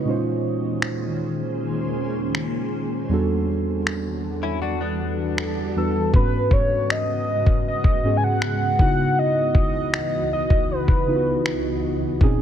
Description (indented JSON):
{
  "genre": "contemporary R&B",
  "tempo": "79 BPM",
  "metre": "4/4",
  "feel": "straight",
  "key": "unclear",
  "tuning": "A4 = 441 Hz",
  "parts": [
    { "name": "muted felt-like synth keys", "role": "accompaniment", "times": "0.0-12.4 s", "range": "E2 to B#4", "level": "-24 LUFS", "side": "right 1 dB", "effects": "chorus, low-pass filter" },
    { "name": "granular cloud pad", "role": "sustained chords", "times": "0.0-12.4 s", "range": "C#2 to D#5", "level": "-28 LUFS", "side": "left 1 dB", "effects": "built-in reverb, low-pass filter" },
    { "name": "dusty soul sampler-style drum kit", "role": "drums", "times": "0.8-12.4 s", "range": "finger snaps, kick drum", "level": "-20 LUFS", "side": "left 1 dB", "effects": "none" },
    { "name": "direct-recorded clean electric guitar", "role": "arpeggios", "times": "4.4-5.9 s", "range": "B3 to F#4", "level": "-29 LUFS", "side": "left 8 dB", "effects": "wide subtle chorus, low-pass filter, ping-pong delay" },
    { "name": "warm velvety synth lead", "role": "melody", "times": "5.8-11.8 s", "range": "A4 to G#5", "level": "-24 LUFS", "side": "equal", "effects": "chorus, low-pass filter, ping-pong delay" }
  ],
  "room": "little or no reverb",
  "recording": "none",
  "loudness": "-20 LUFS",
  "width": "side -10 dB against mid",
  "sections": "0.0-6.1 A section; 6.1-12.4 B section",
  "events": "filter sweep 0.0-6.1; kick muted 3.1-6.1",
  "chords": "0.1 A#m11; 3.1 Em11; 6.1 G#m7; 8.8 C#m11"
}